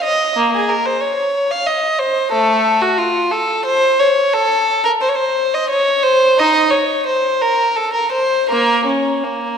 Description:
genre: classical, baroque-style suite movement for unaccompanied violin.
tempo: 79-94 BPM.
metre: 3/4.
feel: rubato.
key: Bb minor.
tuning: A4 = 442 Hz.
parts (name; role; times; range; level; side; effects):
warm violin; solo; 0.0-9.6 s; A3 to F5; -13 LUFS; equal; none.
room: wet scoring stage reverb, RT60 1.6 s.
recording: dark, warm production.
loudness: -13 LUFS.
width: side -7 dB against mid.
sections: 0.0-9.6 A section.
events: none.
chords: none.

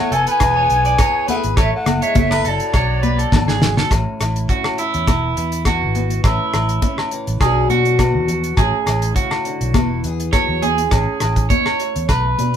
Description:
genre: highlife guitar band.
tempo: 103 BPM.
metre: 4/4.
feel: swing 53% on 16ths.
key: A major.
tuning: A4 = 440 Hz.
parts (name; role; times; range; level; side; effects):
wooden flute; melody; 0.0-3.6 s; D5 to G#5; -19 LUFS; equal; none.
raspy alto saxophone; second line; 0.0-3.6 s; F#3 to B3; -28 LUFS; left 2 dB; none.
picked acoustic archtop guitar; accompaniment; 0.0-12.6 s; G#2 to A4; -26 LUFS; left 4 dB; none.
electric guitar at the edge of break-up; arpeggios; 0.0-12.6 s; E4 to D5; -21 LUFS; right 5 dB; none.
fingered electric bass; bass; 0.1-12.6 s; E1 to B2; -21 LUFS; equal; none.
damped 70s drum kit; drums; 0.1-12.6 s; hi-hat, kick drum, rim click, snare drum; -19 LUFS; equal; none.
agogo bells; percussion; 0.4-12.2 s; none; -26 LUFS; left 5 dB; none.
congas; percussion; 0.4-12.5 s; none; -24 LUFS; left 3 dB; none.
room: moderate small room reverb, RT60 0.5 s.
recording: band playing live in one room.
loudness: -15 LUFS.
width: side -9 dB against mid.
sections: 0.0-3.9 A section; 3.9-12.6 B section.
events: drum fill 3.3-3.9; clean electric guitar solo 3.9-12.6.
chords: 0.4 E; 1.6 A; 2.7 Bm; 3.9 A; 5.1 E; 6.2 A; 7.4 Bm; 8.6 A; 9.8 E; 10.9 A.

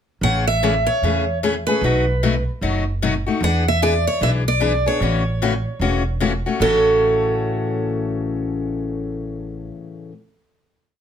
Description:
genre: acoustic string swing (jazz manouche).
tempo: 150 BPM.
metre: 4/4.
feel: swing 62% on 8ths.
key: A major.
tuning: A4 = 445 Hz.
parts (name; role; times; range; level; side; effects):
picked steel-string acoustic guitar; melody; 0.2-9.7 s; A4 to F#5; -21 LUFS; right 2 dB; none.
picked steel-string acoustic guitar; accompaniment; 0.2-10.1 s; A2 to G#4; -22 LUFS; left 5 dB; none.
upright bass; bass; 0.2-9.7 s; E1 to E2; -23 LUFS; right 1 dB; none.
room: moderate studio reverb, RT60 0.6 s.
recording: none.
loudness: -17 LUFS.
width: side -8 dB against mid.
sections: 0.2-6.6 A section; 6.6-9.8 final chord.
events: none.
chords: 0.2 Amaj7; 1.8 B7; 3.4 E7; 5.0 A6.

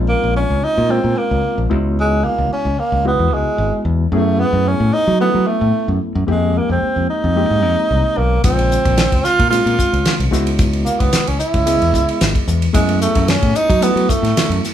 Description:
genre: electric jazz fusion.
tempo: 111 BPM.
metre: 4/4.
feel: swing 53% on 16ths.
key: unclear.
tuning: A4 = 442 Hz.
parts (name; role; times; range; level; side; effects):
barky reed electric piano; accompaniment; 0.0-14.7 s; Db3 to Eb5; -22 LUFS; left 3 dB; overdrive, fast tremolo.
modern bright fingered electric bass; bass; 0.0-14.6 s; Ab1 to Gb3; -18 LUFS; equal; none.
breathy tenor saxophone; melody; 0.1-14.6 s; Ab3 to F4; -18 LUFS; right 2 dB; none.
damped 70s drum kit; drums; 8.4-14.7 s; hi-hat, kick drum, ride cymbal, snare drum; -18 LUFS; equal; none.
room: light reverb.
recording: band playing live in one room.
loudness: -13 LUFS.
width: side -10 dB against mid.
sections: 0.0-14.7 A section.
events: none.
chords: 0.0 Bbm11; 1.7 Dbm11; 4.1 Gbm11; 6.3 Fm11; 8.4 Bbm11; 10.3 Dbm11; 12.7 Gbm11.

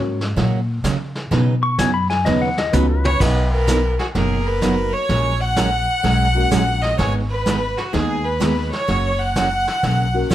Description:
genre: country, western swing.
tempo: 127 BPM.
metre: 4/4.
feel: swing 66% on 8ths.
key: B major.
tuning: A4 = 440 Hz.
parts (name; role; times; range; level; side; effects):
dark upright piano; accompaniment; 0.0-10.3 s; D#3 to C#5; -26 LUFS; left 4 dB; none.
upright bass; bass; 0.0-10.3 s; F#1 to C#3; -21 LUFS; equal; none.
vintage brush drum kit; drums; 0.2-10.3 s; brushed snare drum, crash cymbal, hi-hat, kick drum, snare drum, toms; -25 LUFS; equal; none.
picked steel-string acoustic guitar; accompaniment; 0.4-10.3 s; B2 to B4; -22 LUFS; right 4 dB; none.
pedal steel guitar; second line; 1.6-3.2 s; B4 to C#6; -21 LUFS; left 4 dB; none.
clear fiddle; melody; 3.0-10.3 s; F#4 to F#5; -22 LUFS; equal; plate reverb.
clear fiddle; second line; 3.0-10.3 s; F#4 to G#5; -26 LUFS; right 1 dB; none.
room: light reverb.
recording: none.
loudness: -16 LUFS.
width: side -12 dB against mid.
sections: 0.0-3.2 A section; 3.2-10.3 B section.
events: pedal steel guitar solo 0.0-3.2; drum fill 2.3-3.2.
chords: 0.0 F#; 1.3 Badd9; 3.2 Bmaj7; 5.1 F#add9/A#; 7.0 G#m; 8.9 F#.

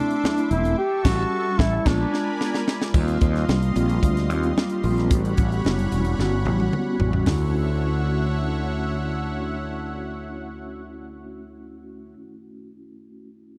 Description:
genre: polished 1980s jazz-funk pop.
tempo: 111 BPM.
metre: 4/4.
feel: straight.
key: D major.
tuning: A4 = 439 Hz.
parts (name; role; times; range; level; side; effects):
mellow duduk; melody; 0.0-2.7 s; D4 to G4; -28 LUFS; equal; tape echo.
mellow tine electric piano; accompaniment; 0.0-13.6 s; G3 to G4; -30 LUFS; equal; ensemble chorus.
lush unison pad; sustained chords; 0.0-12.1 s; D3 to D6; -35 LUFS; equal; chorus.
tight funk drum kit; drums; 0.1-7.4 s; crash cymbal, hi-hat, kick drum, snare drum, toms; -25 LUFS; equal; none.
congas; percussion; 0.2-7.5 s; none; -37 LUFS; equal; none.
fretless electric bass; bass; 0.5-12.1 s; E1 to Eb2; -27 LUFS; equal; none.
room: little or no reverb.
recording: dry, close 1970s-style studio recording.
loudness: -23 LUFS.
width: mono.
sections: 0.0-2.9 A section; 2.9-7.3 B section; 7.3-11.6 C section.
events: band accent 0.8-2.9; drum fill 1.9-2.9, 6.2-7.3.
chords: 0.0 Bbmaj9#11 (rootless); 0.8 A7; 1.9 Bb7b9; 2.9 Eb69; 5.1 A13; 7.3 Dmaj9.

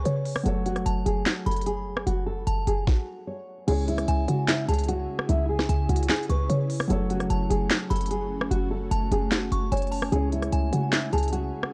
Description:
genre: hip hop, trap.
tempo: 149 BPM.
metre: 4/4.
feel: half-time.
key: C# minor.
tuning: A4 = 440 Hz.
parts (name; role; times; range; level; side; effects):
nylon-string guitar; melody; 0.0-11.7 s; E4 to C#5; -33 LUFS; equal; low-pass filter, delay.
delicate synth tine bell; second line; 0.0-11.3 s; G#5 to C#6; -38 LUFS; equal; chorus, delay.
dark grand piano; accompaniment; 0.0-11.7 s; C#3 to C#5; -36 LUFS; equal; low-pass filter.
short 808-style bass; bass; 0.0-11.5 s; F#1 to C#3; -29 LUFS; equal; none.
trap drum kit; drums; 0.1-11.7 s; crash cymbal, handclaps, hi-hat, kick drum, rim click, snare drum; -30 LUFS; equal; vintage 12-bit sampler grit.
ethereal airy pad; sustained chords; 4.8-11.7 s; C#3 to G#4; -37 LUFS; equal; ensemble chorus, built-in reverb.
room: little or no reverb.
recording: dark, warm production.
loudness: -26 LUFS.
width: mono.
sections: 0.0-3.7 A section; 3.7-11.7 B section.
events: stop 2.9-3.7.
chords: 0.5 F#m; 3.7 C#m; 6.9 F#m; 10.1 C#m.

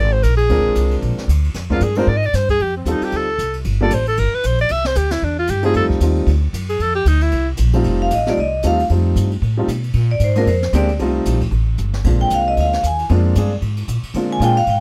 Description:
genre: jazz, small-group swing and bop.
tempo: 229 BPM.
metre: 4/4.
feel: swing 58% on 8ths.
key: unclear.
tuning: A4 = 440 Hz.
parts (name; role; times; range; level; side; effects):
breathy alto saxophone; second line; 0.0-7.5 s; C4 to E5; -21 LUFS; equal; none.
upright bass; bass; 0.0-14.8 s; F1 to D3; -20 LUFS; equal; none.
jazz brush drum kit; drums; 0.2-14.7 s; crash cymbal, hi-hat, kick drum, ride cymbal, snare drum; -33 LUFS; equal; none.
warm grand piano; accompaniment; 0.5-14.6 s; G3 to Bb4; -23 LUFS; equal; none.
vibraphone with medium hard mallets; melody; 8.0-14.8 s; Bb4 to Ab5; -20 LUFS; equal; none.
room: little or no reverb.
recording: dry, close 1970s-style studio recording.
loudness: -17 LUFS.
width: mono.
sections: 0.0-7.9 A section; 7.9-14.8 A section.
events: alto saxophone solo 0.0-7.9; vibraphone solo 7.9-14.8; drum fill 11.8.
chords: 0.0 Bb7; 2.6 F7; 3.7 Gm; 4.7 C; 5.8 F7; 6.3 D; 6.8 Dm; 7.3 C5; 7.9 F7; 10.0 Bb7; 11.0 F7; 12.1 Bb7.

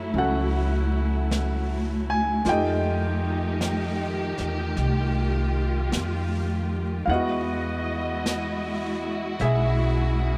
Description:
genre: jazz ballad.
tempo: 52 BPM.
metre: 4/4.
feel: swing 67% on 8ths.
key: unclear.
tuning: A4 = 440 Hz.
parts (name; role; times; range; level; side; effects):
warm concert grand piano; accompaniment; 0.0-10.4 s; F#3 to G#5; -30 LUFS; equal; none.
dark studio string section; sustained chords; 0.0-10.4 s; Eb3 to D#5; -31 LUFS; equal; none.
upright bass; bass; 0.0-10.4 s; B1 to F#2; -29 LUFS; equal; none.
jazz brush drum kit; drums; 0.2-10.4 s; brushed snare drum, hi-hat, snare drum; -38 LUFS; equal; none.
room: wet cathedral reverb, RT60 6.5 s.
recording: in a vast, echoing space.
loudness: -25 LUFS.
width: mono.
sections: 0.0-10.4 A section.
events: none.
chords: 0.0 F#m7; 2.5 F9; 7.1 Emaj9.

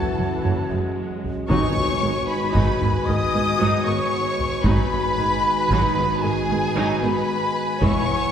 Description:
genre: cinematic, epic orchestral film score.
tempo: 76 BPM (dotted quarters).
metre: 12/8.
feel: straight.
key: G# phrygian.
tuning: A4 = 440 Hz.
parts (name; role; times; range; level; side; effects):
warm studio violin section; melody; 0.0-8.3 s; G#5 to D#6; -28 LUFS; left 4 dB; none.
hollow concert flute; second line; 0.0-8.3 s; G#5 to D#6; -27 LUFS; left 1 dB; none.
warm symphonic violin section; second line; 0.0-8.3 s; G#4 to D#5; -30 LUFS; left 1 dB; none.
warm symphonic viola section; accompaniment; 0.0-8.1 s; D#3 to E4; -29 LUFS; right 1 dB; none.
dark French horn section; sustained chords; 0.0-8.3 s; B3 to F#4; -29 LUFS; left 4 dB; none.
mellow trombone section; sustained chords; 0.0-8.3 s; D#3 to G#3; -30 LUFS; right 3 dB; none.
warm woodwind section; sustained chords; 0.0-8.3 s; B3 to G#5; -32 LUFS; left 1 dB; none.
dark symphonic double bass section; bass; 0.2-7.9 s; E1 to G#1; -28 LUFS; right 2 dB; none.
warm symphonic cello section; bass; 0.2-7.9 s; E2 to G#2; -28 LUFS; right 3 dB; none.
taiko ensemble; drums; 1.2-8.3 s; none; -26 LUFS; equal; none.
timpani; percussion; 1.5-2.2 s; G#2; -27 LUFS; left 1 dB; none.
room: wet scoring stage reverb, RT60 2.0 s.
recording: heard from further back in the room.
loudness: -19 LUFS.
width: side -8 dB against mid.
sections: 0.0-8.3 A section.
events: none.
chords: 0.0 F#m7; 1.5 G#m7; 7.8 E.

